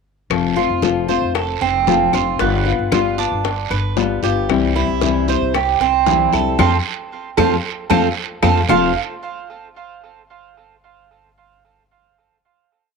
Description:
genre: latin, Cuban son and guajira.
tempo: 114 BPM.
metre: 4/4.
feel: straight.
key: F major.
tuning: A4 = 440 Hz.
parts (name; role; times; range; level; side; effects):
nylon-string guitar; accompaniment; 0.3-8.9 s; F2 to F4; -19 LUFS; left 11 dB; none.
upright bass; bass; 0.3-8.9 s; F1 to F2; -22 LUFS; equal; none.
bongos; percussion; 0.3-8.8 s; none; -24 LUFS; left 14 dB; none.
claves; percussion; 0.3-8.8 s; none; -26 LUFS; left 15 dB; none.
congas; percussion; 0.3-8.8 s; none; -26 LUFS; left 1 dB; none.
guiro; percussion; 0.3-8.8 s; none; -29 LUFS; right 14 dB; none.
Cuban tres; arpeggios; 0.6-8.9 s; B3 to F5; -19 LUFS; right 12 dB; tape echo.
room: moderate spring reverb, RT60 1.7 s, small room ambience.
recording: 1960s-style stereo with parts hard left and right.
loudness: -15 LUFS.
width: side -4 dB against mid.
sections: 0.3-8.7 A section; 8.7-10.8 final chord.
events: band accent 6.6-8.7; drum fill 7.9-8.7.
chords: 0.3 F; 2.4 G7; 4.5 C; 6.6 F; 8.7 F5.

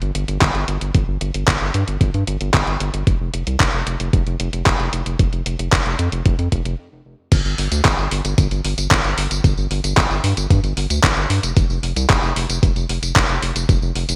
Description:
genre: italo disco.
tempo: 113 BPM.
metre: 4/4.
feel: straight.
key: unclear.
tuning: A4 = 441 Hz.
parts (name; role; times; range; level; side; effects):
round analog bass; bass; 0.0-14.2 s; F1 to G2; -24 LUFS; equal; none.
gated 80s digital drum machine; drums; 0.0-14.2 s; crash cymbal, handclaps, hi-hat, tambourine; -23 LUFS; equal; gated reverb.
electronic kick drum; drums; 0.4-13.8 s; none; -20 LUFS; equal; overdrive.
room: light reverb.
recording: bright 1980s-style digital production.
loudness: -19 LUFS.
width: mono.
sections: 0.0-7.3 A section; 7.3-14.2 B section.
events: stop 6.8-7.3.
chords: none.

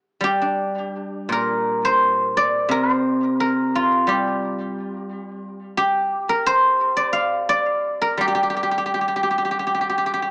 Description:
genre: chinese traditional, Chinese solo plucked strings.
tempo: 76-90 BPM.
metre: 4/4.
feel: rubato.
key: G yu mode.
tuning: A4 = 440 Hz.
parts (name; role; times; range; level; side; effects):
guzheng; solo; 0.2-10.3 s; Bb2 to F5; -21 LUFS; equal; none.
room: moderate spring reverb, RT60 2.7 s.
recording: dry, gritty hardware recording, small speaker sound.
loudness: -21 LUFS.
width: mono.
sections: 0.0-10.3 A section.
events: none.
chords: none.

